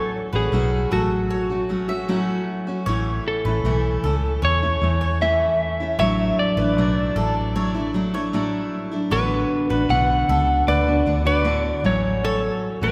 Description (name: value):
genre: acoustic pop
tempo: 77 BPM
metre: 4/4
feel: straight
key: unclear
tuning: A4 = 440 Hz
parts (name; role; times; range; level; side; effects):
- electric slide guitar; melody; 0.0-12.9 s; F#4 to F#5; -25 LUFS; equal; none
- picked steel-string acoustic guitar; accompaniment; 0.0-12.9 s; A2 to F#4; -26 LUFS; equal; none
- mandolin; arpeggios; 0.0-12.9 s; A4 to E5; -33 LUFS; equal; none
- vintage muted fingered electric bass; bass; 0.3-12.9 s; A1 to E2; -26 LUFS; equal; none
room: wet church reverb, RT60 3.0 s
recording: recorded in a church or concert hall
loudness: -21 LUFS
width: mono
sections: 0.0-12.9 A section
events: none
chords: 0.0 F#m/A; 2.9 A; 6.0 Dadd9/A; 9.1 Bm7/A; 11.8 F#m/A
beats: 0.52 1.30 2.08 | 2.86 3.64 4.42 5.21 | 5.99 6.77 7.55 8.33 | 9.11 9.89 10.67 11.45 | 12.23